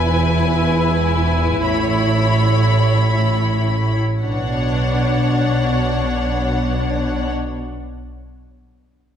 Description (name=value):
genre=cinematic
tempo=free time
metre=none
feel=none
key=B dorian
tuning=A4 = 441 Hz
part: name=warm symphonic violin section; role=melody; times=0.0-7.3 s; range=F#5 to B5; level=-25 LUFS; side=left 3 dB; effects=none
part: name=warm symphonic violin section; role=second line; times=0.0-7.3 s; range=B4 to C#5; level=-25 LUFS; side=left 3 dB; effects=none
part: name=clear symphonic viola section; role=accompaniment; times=0.0-7.3 s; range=D4 to E4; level=-23 LUFS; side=right 1 dB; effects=none
part: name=rich symphonic cello section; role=bass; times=0.0-7.3 s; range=E2 to B2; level=-21 LUFS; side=right 1 dB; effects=none
part: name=rich symphonic double bass section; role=bass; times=0.0-7.3 s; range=E1 to B1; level=-21 LUFS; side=right 1 dB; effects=none
room=wet concert hall reverb, RT60 1.9 s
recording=recorded in a church or concert hall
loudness=-15 LUFS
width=side -9 dB against mid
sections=0.0-4.2 A section; 4.2-6.8 B section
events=none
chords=0.0 E; 1.6 Aadd9; 4.2 Bmadd9